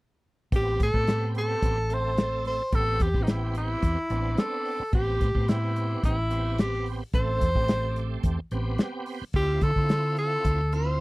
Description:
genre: straight-eighth soul blues.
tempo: 109 BPM.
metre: 4/4.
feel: straight.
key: A minor.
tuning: A4 = 440 Hz.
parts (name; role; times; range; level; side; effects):
bright tonewheel organ; accompaniment; 0.5-11.0 s; A3 to A4; -36 LUFS; right 4 dB; slow rotary speaker, overdrive, chorus vibrato.
hollow-body short-scale fingered electric bass; bass; 0.5-11.0 s; A1 to D3; -28 LUFS; equal; none.
warm soul drum kit; drums; 0.5-10.9 s; hi-hat, kick drum, snare drum; -25 LUFS; equal; none.
warm tenor saxophone; melody; 0.6-11.0 s; D#4 to C5; -28 LUFS; equal; none.
room: little or no reverb.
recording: dry, close 1970s-style studio recording.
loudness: -24 LUFS.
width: side -22 dB against mid.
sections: 0.5-11.0 A section.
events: none.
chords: 0.5 Am7; 9.3 Dm7.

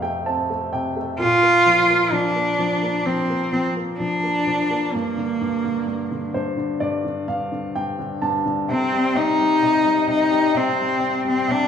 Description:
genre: pop.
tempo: 64 BPM.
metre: 4/4.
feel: straight.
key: Bb major.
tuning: A4 = 440 Hz.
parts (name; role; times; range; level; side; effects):
clear grand piano; accompaniment; 0.0-11.7 s; F2 to A5; -24 LUFS; left 1 dB; none.
rich cello; melody; 1.2-11.7 s; Bb3 to F4; -18 LUFS; equal; none.
room: wet large studio reverb, RT60 1.2 s.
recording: band playing live in one room.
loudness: -18 LUFS.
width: side -8 dB against mid.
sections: 0.0-11.7 A section.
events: grand piano fill 0.0-1.2, 5.9-8.7.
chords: 0.0 F; 1.2 Bb; 4.9 Gm; 8.7 Cm.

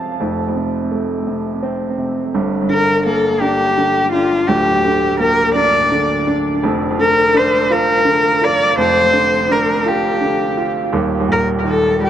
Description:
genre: pop.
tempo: 56 BPM (dotted quarters).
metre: 6/8.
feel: straight.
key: unclear.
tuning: A4 = 438 Hz.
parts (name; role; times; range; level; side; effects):
warm baby grand piano; accompaniment; 0.0-12.1 s; D1 to A5; -17 LUFS; right 1 dB; tape echo.
dark cello; melody; 2.7-12.1 s; F4 to D5; -14 LUFS; left 1 dB; tape echo.
room: moderate spring reverb, RT60 2.3 s.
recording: echo-heavy mix, nothing above 10.4 kHz.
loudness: -13 LUFS.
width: side -10 dB against mid.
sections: 0.2-2.3 A section; 2.3-12.1 B section.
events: grand piano fill 0.0.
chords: 0.2 F; 2.3 Gm; 6.6 Bb/F; 10.9 Eb5.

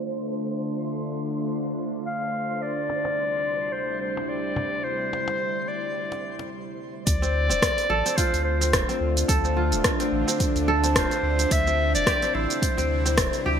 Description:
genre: organic downtempo.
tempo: 108 BPM.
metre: 4/4.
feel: swing 56% on 16ths.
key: D minor.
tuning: A4 = 440 Hz.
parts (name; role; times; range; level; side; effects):
clear clarinet; melody; 0.0-13.5 s; C5 to F5; -27 LUFS; left 1 dB; ping-pong delay.
bowed-like drone; sustained chords; 0.0-13.6 s; D2 to F4; -30 LUFS; equal; built-in reverb, sidechain pumping.
twinkling granular texture; texture; 0.0-6.5 s; C5; -38 LUFS; right 3 dB; built-in reverb.
cajon; percussion; 2.9-6.5 s; none; -36 LUFS; left 2 dB; none.
warm sub bass; bass; 7.1-13.6 s; D1 to D2; -26 LUFS; equal; sidechain pumping.
deep house drum kit; drums; 7.1-13.4 s; hi-hat, rim click, shaker; -26 LUFS; equal; gated reverb.
electronic kick drum; drums; 7.1-13.3 s; none; -26 LUFS; equal; none.
kora; arpeggios; 7.2-13.6 s; C4 to A4; -27 LUFS; equal; ping-pong delay.
room: moderate lush hall reverb, RT60 2.0 s, digital ambience.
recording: bright 1980s-style digital production, low-pass filter.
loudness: -22 LUFS.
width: side -8 dB against mid.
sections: 0.0-7.1 A section; 7.1-13.6 B section.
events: filter sweep on synth drone 0.0-7.1; filter sweep 0.0-7.1; stop 6.5-7.1.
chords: 0.0 Dm7; 2.6 Cadd9/D; 7.1 Dm7; 11.5 C69/D.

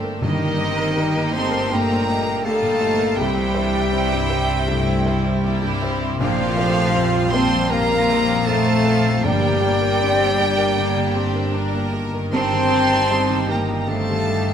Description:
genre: cinematic.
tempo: 79 BPM.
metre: 4/4.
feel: rubato.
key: unclear.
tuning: A4 = 441 Hz.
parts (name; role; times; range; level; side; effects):
clear studio violin section; second line; 0.0-14.5 s; D4 to Bb4; -30 LUFS; equal; none.
felt-muted upright piano; accompaniment; 0.0-14.5 s; Bb1 to Eb5; -27 LUFS; left 2 dB; none.
warm studio viola section; accompaniment; 0.0-14.5 s; Eb3 to Eb4; -29 LUFS; right 1 dB; none.
concert harp; arpeggios; 0.0-14.5 s; G2 to D6; -28 LUFS; left 7 dB; none.
warm chamber double bass section; bass; 0.0-14.5 s; G1 to C2; -26 LUFS; right 3 dB; none.
warm chamber violin section; melody; 0.2-14.5 s; Eb5 to C6; -26 LUFS; right 3 dB; none.
mellow clarinet; second line; 0.2-14.5 s; Eb4 to C5; -28 LUFS; equal; none.
silver concert flute; second line; 0.2-14.5 s; Bb4 to A5; -26 LUFS; equal; none.
mellow French horn section; sustained chords; 0.2-14.5 s; Bb2 to A4; -25 LUFS; left 4 dB; none.
warm symphonic cello section; bass; 0.2-14.5 s; Eb3 to C4; -25 LUFS; right 2 dB; none.
timpani; percussion; 0.2-1.3, 9.2-10.4 s; G2; -29 LUFS; right 2 dB; none.
room: moderate scoring stage reverb, RT60 1.8 s.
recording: none.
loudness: -17 LUFS.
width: side -8 dB against mid.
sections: 0.0-14.5 A section.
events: none.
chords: 0.2 Eb/G; 3.2 C; 6.2 Bbsus2; 9.2 Gm; 12.3 Eb/G.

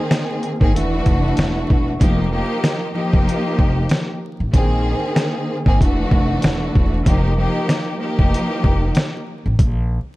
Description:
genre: hip hop, boom-bap hip-hop.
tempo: 95 BPM.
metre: 4/4.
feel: swing 55% on 16ths.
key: unclear.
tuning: A4 = 439 Hz.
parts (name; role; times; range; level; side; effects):
warm studio string section; accompaniment; 0.0-9.2 s; Eb3 to Ab4; -20 LUFS; equal; none.
dusty soul sampler-style drum kit; drums; 0.1-9.8 s; hi-hat, kick drum, snare drum; -17 LUFS; equal; none.
upright bass; bass; 0.6-10.0 s; E1 to Bb1; -20 LUFS; equal; none.
room: studio reverb.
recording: dark, warm production, vinyl crackle.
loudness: -16 LUFS.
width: side -18 dB against mid.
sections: 0.0-10.2 A section.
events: none.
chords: 0.0 Bb9sus4; 0.7 E9sus4; 2.0 F9sus4; 4.5 Bb9sus4; 5.8 E9sus4; 7.1 F9sus4; 9.6 N.C..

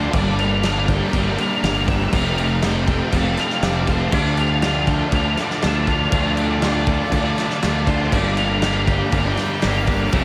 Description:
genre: rock, shoegaze and dream pop.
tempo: 120 BPM.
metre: 4/4.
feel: straight.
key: unclear.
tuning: A4 = 440 Hz.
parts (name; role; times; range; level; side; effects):
octave-fuzz lead guitar; melody; 0.0-10.2 s; C5 to A5; -29 LUFS; equal; distortion, analog delay.
shimmering ambient pad; sustained chords; 0.0-10.2 s; F4 to Bb5; -32 LUFS; equal; chorus, built-in reverb.
raw garage guitar; riff; 0.0-10.2 s; F2 to D4; -29 LUFS; equal; overdrive, lush chorus.
sludgy distorted guitar; riff; 0.0-10.2 s; F2 to D4; -29 LUFS; equal; overdrive.
fuzz fingered electric bass; bass; 0.0-10.2 s; F1 to D2; -24 LUFS; equal; overdrive.
loose indie drum kit; drums; 0.1-10.2 s; crash cymbal, kick drum, snare drum; -24 LUFS; equal; none.
twangy electric guitar; riff; 4.1-10.2 s; G2 to G4; -30 LUFS; equal; reverse reverb.
room: light reverb, small room ambience.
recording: none.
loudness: -19 LUFS.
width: mono.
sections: 0.0-10.2 A section.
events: none.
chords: 0.1 Gm; 2.1 Fadd9; 4.1 Dm; 8.1 Gm.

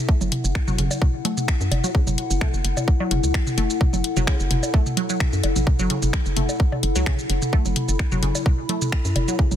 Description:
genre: minimal techno.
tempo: 129 BPM.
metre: 4/4.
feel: swing 54% on 16ths.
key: F# minor.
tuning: A4 = 440 Hz.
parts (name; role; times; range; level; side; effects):
warbly tape-like pad; texture; 0.0-9.6 s; E4 to B5; -28 LUFS; left 3 dB; chorus, built-in reverb, sidechain pumping.
resonant blip pluck; riff; 0.1-9.4 s; C#3 to A3; -29 LUFS; equal; phaser, cassette tape, sidechain pumping, ping-pong delay.
electronic kick drum; drums; 0.1-9.5 s; none; -19 LUFS; equal; overdrive.
hollow knocking FM bass; bass; 0.2-9.6 s; F#1 to F#2; -23 LUFS; equal; sidechain pumping.
garage drum kit; drums; 0.2-9.6 s; finger snaps, hi-hat, shaker; -28 LUFS; left 1 dB; soft clipping on snare.
electronic congas, toms and bongos; percussion; 0.2-9.6 s; none; -28 LUFS; right 1 dB; none.
room: little or no reverb.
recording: dense, heavily limited modern master.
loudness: -19 LUFS.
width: side -10 dB against mid.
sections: 0.0-9.6 A section.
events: none.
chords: 0.0 F#m7.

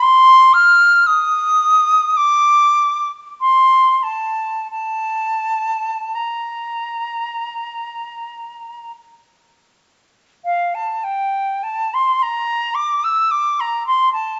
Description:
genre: classical, free, expressive piece for unaccompanied flute.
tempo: 32-58 BPM.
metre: 4/4.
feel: rubato.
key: unclear.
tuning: A4 = 440 Hz.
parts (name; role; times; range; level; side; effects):
silver concert flute; solo; 0.0-14.4 s; F5 to F6; -16 LUFS; equal; none.
room: moderate recital hall reverb, RT60 1.6 s.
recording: nothing above 7.8 kHz.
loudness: -16 LUFS.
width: mono.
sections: 0.0-10.5 A section; 10.5-14.4 B section.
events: none.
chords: none.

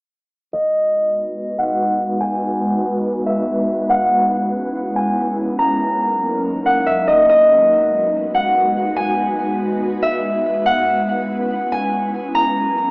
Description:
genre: hip hop.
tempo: 142 BPM.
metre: 4/4.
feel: half-time.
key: G# minor.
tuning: A4 = 438 Hz.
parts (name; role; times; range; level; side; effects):
concert harp; melody; 0.5-12.9 s; D#5 to A#5; -16 LUFS; equal; low-pass filter, cassette tape, tape echo.
ethereal airy pad; sustained chords; 1.1-12.9 s; F#3 to B4; -21 LUFS; equal; ensemble chorus, built-in reverb, low-pass filter, cassette tape.
room: moderate spring reverb, RT60 1.7 s.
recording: home recording on cassette, small speaker sound.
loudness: -15 LUFS.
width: side -35 dB against mid.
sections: 0.5-12.9 A section.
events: filter sweep 0.5-12.9.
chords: 0.5 G#m7; 3.9 C#m7; 5.6 D#m7; 7.3 G#m7; 10.7 C#m7; 12.4 D#m7.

